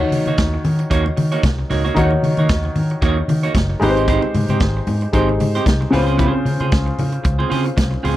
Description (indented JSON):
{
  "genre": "disco",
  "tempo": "114 BPM",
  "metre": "4/4",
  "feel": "swing 56% on 16ths",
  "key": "unclear",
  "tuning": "A4 = 440 Hz",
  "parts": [
    { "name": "semi-hollow electric guitar", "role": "accompaniment", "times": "0.0-8.2 s", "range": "Bb3 to Db5", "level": "-23 LUFS", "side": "right 5 dB", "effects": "none" },
    { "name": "warm concert grand piano", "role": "accompaniment", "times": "0.0-8.2 s", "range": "Db3 to Db5", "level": "-21 LUFS", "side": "left 2 dB", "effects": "none" },
    { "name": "vintage muted fingered electric bass", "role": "bass", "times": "0.0-8.2 s", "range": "Gb1 to Eb3", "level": "-19 LUFS", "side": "equal", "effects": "none" },
    { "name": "congas", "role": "percussion", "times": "0.0-8.2 s", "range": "none", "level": "-26 LUFS", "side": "left 4 dB", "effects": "none" },
    { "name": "vintage drum kit", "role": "drums", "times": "0.1-8.2 s", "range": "hi-hat, kick drum, snare drum", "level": "-21 LUFS", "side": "equal", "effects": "none" }
  ],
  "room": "studio reverb",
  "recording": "dry, close 1970s-style studio recording",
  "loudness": "-15 LUFS",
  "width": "side -14 dB against mid",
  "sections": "0.0-8.2 A section",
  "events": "none",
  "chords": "0.0 Ebm7; 3.8 Abmaj7; 5.9 Dbmaj7"
}